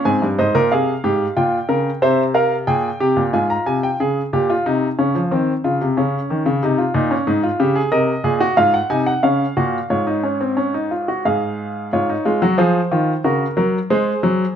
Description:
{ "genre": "classical, baroque-style 3-part fugue for grand piano", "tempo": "91 BPM", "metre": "3/4", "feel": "straight", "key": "Db major from 7.9 s", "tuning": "A4 = 443 Hz", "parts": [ { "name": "clear baby grand piano", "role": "solo", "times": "0.0-14.5 s", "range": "G2 to Bb5", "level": "-16 LUFS", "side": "equal", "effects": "none" } ], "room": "moderate stone room reverb, RT60 1.1 s", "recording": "dark, warm production", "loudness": "-16 LUFS", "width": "side -8 dB against mid", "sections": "0.0-4.0 A section; 4.0-11.9 B section; 11.9-14.6 C section", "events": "none", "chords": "0.1 Fm; 1.4 Gm7b5/Bb; 2.0 C7; 3.3 Fm/Ab; 4.0 Db; 5.3 Cm/Eb; 6.0 Bbm/Db; 7.3 Ab5; 7.9 Ab7; 9.2 Db; 9.9 Db/Ab; 11.3 Fm/Ab; 11.9 Db/Ab; 13.2 Gb/Db; 13.9 Ab7", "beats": "| 0.06 0.71 1.37 | 2.02 2.67 3.33 | 4.00 4.66 5.32 | 5.97 6.62 7.27 | 7.92 8.56 9.22 | 9.90 10.57 11.26 | 11.93 12.59 13.25 | 13.91" }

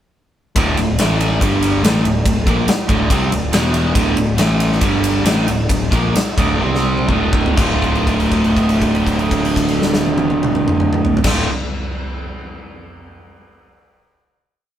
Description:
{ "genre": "classic rock", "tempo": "121-141 BPM", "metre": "4/4", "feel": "straight", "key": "D minor", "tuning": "A4 = 439 Hz", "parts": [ { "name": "string machine, full ensemble", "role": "sustained chords", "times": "0.6-11.5 s", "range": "G3 to G5", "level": "-30 LUFS", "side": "left 1 dB", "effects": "none" }, { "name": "cranked stack guitar", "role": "riff", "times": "0.6-11.5 s", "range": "D2 to F4", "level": "-18 LUFS", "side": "right 4 dB", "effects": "overdrive" }, { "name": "sludgy distorted guitar", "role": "riff", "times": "0.6-11.5 s", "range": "D2 to F4", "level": "-21 LUFS", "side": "left 4 dB", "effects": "overdrive" }, { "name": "fuzz picked electric bass", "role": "bass", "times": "0.6-11.5 s", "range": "D1 to C2", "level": "-21 LUFS", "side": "equal", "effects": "overdrive" }, { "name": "huge arena drum kit", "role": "drums", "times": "0.6-11.4 s", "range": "crash cymbal, kick drum, ride cymbal, snare drum, toms", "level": "-19 LUFS", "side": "equal", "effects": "none" } ], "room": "moderate studio reverb, RT60 0.9 s", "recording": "band playing live in one room", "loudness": "-14 LUFS", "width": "side -10 dB against mid", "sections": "0.6-7.6 riff; 7.6-11.5 final chord", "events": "slowing down 4.0-7.6; drum fill 6.6-7.6; held note 7.6-11.2", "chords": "0.6 Dm; 1.0 A5; 1.4 G5; 1.8 Dm; 3.5 E5; 4.0 Dm; 4.4 A5; 4.8 G5; 5.3 Dm; 6.6 C5; 7.1 Dm", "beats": "| 0.56 0.98 1.41 1.83 | 2.26 2.68 3.11 3.53 | 3.96 4.39 4.82 5.25 | 5.69 6.14 6.61 7.08 | 7.57 8.07 8.56 9.06 | 9.56 10.05 10.55 11.05" }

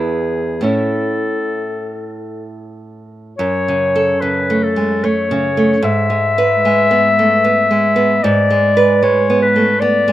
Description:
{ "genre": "romantic duo for clarinet and classical guitar", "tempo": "63-78 BPM", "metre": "3/4", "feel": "rubato", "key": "unclear", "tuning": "A4 = 440 Hz", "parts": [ { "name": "warm clarinet", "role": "melody", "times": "0.0-10.1 s", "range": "G#4 to E5", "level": "-15 LUFS", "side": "left 3 dB", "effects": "tape echo" }, { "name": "nylon-string guitar", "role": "accompaniment", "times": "0.0-10.1 s", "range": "E2 to B4", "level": "-16 LUFS", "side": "right 3 dB", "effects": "none" } ], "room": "light reverb", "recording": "rough home demo mix", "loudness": "-12 LUFS", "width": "side -13 dB against mid", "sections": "0.0-3.4 A section; 3.4-10.1 B section", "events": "none", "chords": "0.0 E; 0.7 A; 3.4 F#m; 5.8 E/G#", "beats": "| 0.67 1.60 2.50 | 3.40 4.23 5.05 | 5.85 6.66 7.46 | 8.24 9.04 9.82" }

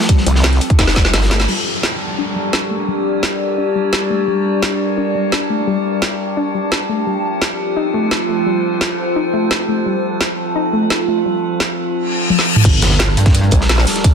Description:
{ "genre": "dark technical drum and bass", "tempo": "172 BPM", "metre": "4/4", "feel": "straight", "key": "G minor", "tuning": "A4 = 440 Hz", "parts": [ { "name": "metallic inharmonic drone", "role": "sustained chords", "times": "0.0-14.1 s", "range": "F3 to Bb4", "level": "-20 LUFS", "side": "right 1 dB", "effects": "chorus, built-in reverb, phaser, sidechain pumping" }, { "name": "crunchy breakbeat drum kit", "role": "drums", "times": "0.0-1.5, 12.6-14.1 s", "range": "hi-hat, snare drum", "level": "-23 LUFS", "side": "equal", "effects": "high-pass filter on hats, high-pass filter on snare, high-pass filter on room" }, { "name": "soft round pluck", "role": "arpeggios", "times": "0.1-11.3 s", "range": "G3 to Eb4", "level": "-22 LUFS", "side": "left 3 dB", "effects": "chorus, sidechain pumping, ping-pong delay" }, { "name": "drum and bass drum kit", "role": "drums", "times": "0.1-14.1 s", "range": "crash cymbal, hi-hat, rim click, snare drum, toms", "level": "-18 LUFS", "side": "equal", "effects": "none" }, { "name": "electronic kick drum", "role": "drums", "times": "0.1-1.0, 12.6-14.1 s", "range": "none", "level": "-12 LUFS", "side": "equal", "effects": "none" }, { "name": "vowel-sweep wobble bass", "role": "bass", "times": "0.3-1.5, 13.5-13.9 s", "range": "F1 to C2", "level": "-14 LUFS", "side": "equal", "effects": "chorus" }, { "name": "downlifter, reverse cymbal and sub drop", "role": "sound effects", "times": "1.5-4.3, 12.0-14.0 s", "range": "none", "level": "-22 LUFS", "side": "left 2 dB", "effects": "none" }, { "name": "warbly tape-like pad", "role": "texture", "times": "2.4-12.0 s", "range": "F4 to A5", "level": "-22 LUFS", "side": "left 1 dB", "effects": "chorus, built-in reverb, phaser, sidechain pumping" }, { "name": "metallic wobble bass", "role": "bass", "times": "12.6-13.5 s", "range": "G1 to G2", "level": "-14 LUFS", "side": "equal", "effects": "chorus, tube saturation, sidechain pumping" } ], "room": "moderate digital room reverb, RT60 1.1 s", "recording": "dense, heavily limited modern master", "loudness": "-14 LUFS", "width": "side -6 dB against mid", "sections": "0.0-1.5 A section; 1.5-12.6 B section; 12.6-14.1 C section", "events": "drum fill 0.8-1.5, 12.3-12.6; band accent 1.4; filter sweep on synth pluck 1.5-12.6; reverse cymbal 12.0-12.6; drop 12.6-14.1; impact 12.6-14.0", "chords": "0.0 F; 1.5 Gm; 7.1 F; 12.6 Gm", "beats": "| 0.09 0.44 0.79 1.14 | 1.49 1.83 2.18 2.53 | 2.88 3.23 3.58 3.93 | 4.28 4.62 4.97 5.32 | 5.67 6.02 6.37 6.72 | 7.07 7.42 7.76 8.11 | 8.46 8.81 9.16 9.51 | 9.86 10.21 10.55 10.90 | 11.25 11.60 11.95 12.30 | 12.65 13.00 13.35 13.70 | 14.04" }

